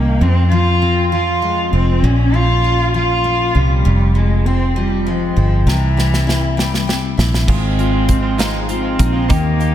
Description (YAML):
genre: six-eight pop ballad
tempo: 66 BPM (dotted quarters)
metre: 6/8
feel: straight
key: F minor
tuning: A4 = 440 Hz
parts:
  - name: dark cello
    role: melody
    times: 0.0-9.7 s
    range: E3 to F4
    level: -18 LUFS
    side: right 1 dB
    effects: tape echo
  - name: picked steel-string acoustic guitar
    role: accompaniment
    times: 0.0-9.7 s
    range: F2 to C5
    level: -20 LUFS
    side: left 4 dB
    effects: lush chorus
  - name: fingered electric bass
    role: bass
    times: 0.0-9.7 s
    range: F1 to F2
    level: -16 LUFS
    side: equal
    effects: none
  - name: modern studio drum kit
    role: drums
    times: 5.7-9.7 s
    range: crash cymbal, hi-hat, kick drum, snare drum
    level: -19 LUFS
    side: right 1 dB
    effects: none
  - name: direct-recorded clean electric guitar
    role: arpeggios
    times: 7.5-9.7 s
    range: Ab2 to G4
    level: -24 LUFS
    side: right 5 dB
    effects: tape echo
room: moderate lush hall reverb, RT60 1.8 s, small room ambience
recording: dreamy mix soaked in reverb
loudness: -13 LUFS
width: side -11 dB against mid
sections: 0.0-7.5 A section; 7.5-9.7 B section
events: drum fill 5.7-7.5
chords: 0.2 Fm; 2.0 Bbm; 3.8 Fm; 5.7 C; 7.5 Ab6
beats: | 0.20 1.12 | 2.03 2.94 | 3.85 4.76 | 5.67 6.58 | 7.49 8.40 | 9.30